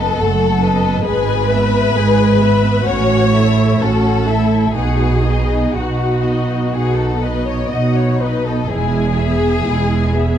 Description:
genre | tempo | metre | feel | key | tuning
classical, slow romantic movement for string orchestra | 59-68 BPM | 4/4 | rubato | E major | A4 = 439 Hz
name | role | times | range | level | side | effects
warm studio violin section | melody | 0.0-10.4 s | D#5 to G#5 | -26 LUFS | left 8 dB | none
rich studio violin section | second line | 0.0-10.4 s | F#4 to D#5 | -19 LUFS | left 4 dB | none
rich studio viola section | accompaniment | 0.0-10.4 s | G#3 to B4 | -22 LUFS | equal | none
rich studio double bass section | bass | 0.0-10.4 s | E1 to B1 | -19 LUFS | right 3 dB | none
warm studio cello section | bass | 0.0-10.4 s | E2 to B2 | -18 LUFS | right 2 dB | none
room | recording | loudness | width
wet recital hall reverb, RT60 1.5 s | dark, warm production | -13 LUFS | side -9 dB against mid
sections
0.0-10.4 A section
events
none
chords
0.0 B7/F#; 1.1 E/G#; 2.9 A6; 4.8 B; 8.7 E

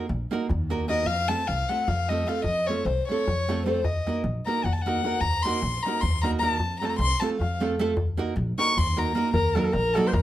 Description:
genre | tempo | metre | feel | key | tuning
balkan folk, Balkan wedding band | 305 BPM (eighths) | 7/8 | straight | Eb dorian sharp4 | A4 = 440 Hz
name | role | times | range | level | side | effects
nylon-string guitar | accompaniment | 0.0-10.1 s | Gb3 to Bb4 | -28 LUFS | right 4 dB | none
darbuka | percussion | 0.0-10.2 s | none | -31 LUFS | left 1 dB | none
upright bass | bass | 0.1-10.2 s | Bb1 to F2 | -29 LUFS | equal | none
dark violin | second line | 0.9-10.2 s | C5 to Db6 | -27 LUFS | left 3 dB | none
mellow clarinet | melody | 9.3-10.2 s | A4 to C5 | -24 LUFS | equal | none
room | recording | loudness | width
moderate studio reverb, RT60 0.6 s | none | -23 LUFS | side -13 dB against mid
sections
0.0-9.3 A section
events
violin solo 0.0-9.3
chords
0.0 Ebm; 1.1 F; 3.8 Ebm; 6.6 F; 8.0 Ebm

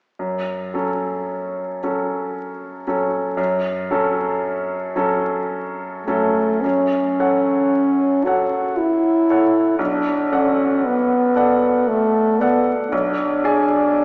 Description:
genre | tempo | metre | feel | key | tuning
classical, romantic duo for French horn and grand piano | 57 BPM | 3/4 | uneven beats, rubato | F# minor | A4 = 440 Hz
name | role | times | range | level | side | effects
clear baby grand piano | accompaniment | 0.2-14.0 s | B1 to G#5 | -23 LUFS | equal | none
warm French horn | melody | 6.1-14.0 s | A3 to F#4 | -20 LUFS | equal | none
room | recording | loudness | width
wet concert hall reverb, RT60 2.3 s | heard from further back in the room, vinyl crackle, small speaker sound | -19 LUFS | mono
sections
0.2-6.6 A section; 6.6-14.0 B section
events
none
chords
0.2 F#m; 9.8 Bm7; 12.9 G#dim/B

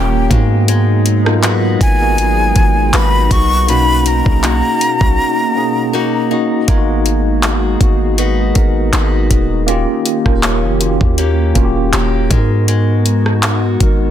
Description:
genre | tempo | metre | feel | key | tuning
contemporary R&B | 80 BPM | 4/4 | swing 54% on 16ths | G# dorian | A4 = 439 Hz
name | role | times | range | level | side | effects
breathy jazz flute | melody | 0.0-6.3 s | G5 to C#6 | -17 LUFS | left 1 dB | ping-pong delay
mellow tine electric piano | accompaniment | 0.0-14.1 s | A#3 to A#4 | -18 LUFS | right 1 dB | medium stereo tremolo
hollow soft pad | sustained chords | 0.0-14.1 s | B2 to G#4 | -23 LUFS | left 1 dB | chorus, sidechain pumping
picked old ladder-braced acoustic guitar | arpeggios | 0.0-14.1 s | B2 to B4 | -23 LUFS | left 6 dB | ping-pong delay
warm 808-style bass | bass | 0.0-14.1 s | D#1 to G#2 | -15 LUFS | equal | none
smooth R&B drum kit | drums | 0.3-14.0 s | handclaps, hi-hat, kick drum, rim click | -15 LUFS | equal | none
room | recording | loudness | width
digital ambience | dense, heavily limited modern master | -11 LUFS | side -10 dB against mid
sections
0.0-6.7 A section; 6.7-14.1 B section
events
break 5.2-6.7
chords
0.3 G#m7; 3.7 Bmaj7; 6.7 G#m7; 9.7 D#7; 12.3 G#m7

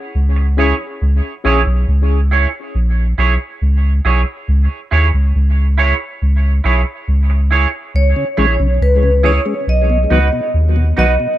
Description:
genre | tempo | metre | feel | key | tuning
reggae | 69 BPM | 4/4 | straight | C# dorian | A4 = 440 Hz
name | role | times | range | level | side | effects
soft dub sub bass | bass | 0.1-11.2 s | A#1 to D#2 | -13 LUFS | equal | none
clean electric guitar | accompaniment | 0.4-11.1 s | D#4 to C#5 | -19 LUFS | right 6 dB | analog chorus, tape echo
reed electric piano | stabs | 0.6-1.6 s | C#4 to C#5 | -23 LUFS | left 5 dB | fast tremolo, tape echo
vibraphone with medium mallets | melody | 8.0-11.4 s | B4 to D#5 | -18 LUFS | equal | tape echo
mellow tonewheel organ | accompaniment | 8.2-11.3 s | B2 to C#4 | -21 LUFS | left 3 dB | slow rotary speaker, tape echo
room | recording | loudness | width
digital ambience | none | -12 LUFS | side -13 dB against mid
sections
0.0-11.4 A section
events
break 0.0-7.9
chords
0.0 C#m; 9.7 B

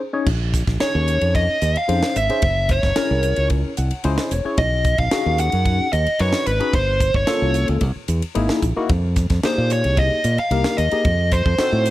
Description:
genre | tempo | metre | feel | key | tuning
electric jazz fusion | 111 BPM | 4/4 | straight | unclear | A4 = 440 Hz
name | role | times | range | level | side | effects
barky tine electric piano | accompaniment | 0.1-11.9 s | Bb3 to Gb5 | -24 LUFS | left 4 dB | medium stereo tremolo, phaser
modern bright fingered electric bass | bass | 0.3-11.9 s | Fb1 to Bb2 | -20 LUFS | equal | none
crisp fusion drum kit | drums | 0.3-11.9 s | crash cymbal, hi-hat, kick drum, ride cymbal, snare drum | -24 LUFS | equal | none
dark smooth lead guitar | melody | 0.8-11.9 s | B4 to F#5 | -20 LUFS | equal | overdrive
room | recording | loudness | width
light reverb, small room reverb | none | -17 LUFS | side -15 dB against mid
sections
0.3-11.9 A section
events
break 0.0; tine electric piano fill 3.5-4.6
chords
0.3 Bbm11; 2.4 Gb9; 4.6 B69; 6.7 Gm7b5; 7.8 C7alt; 8.9 Fm11; 11.1 F7b9

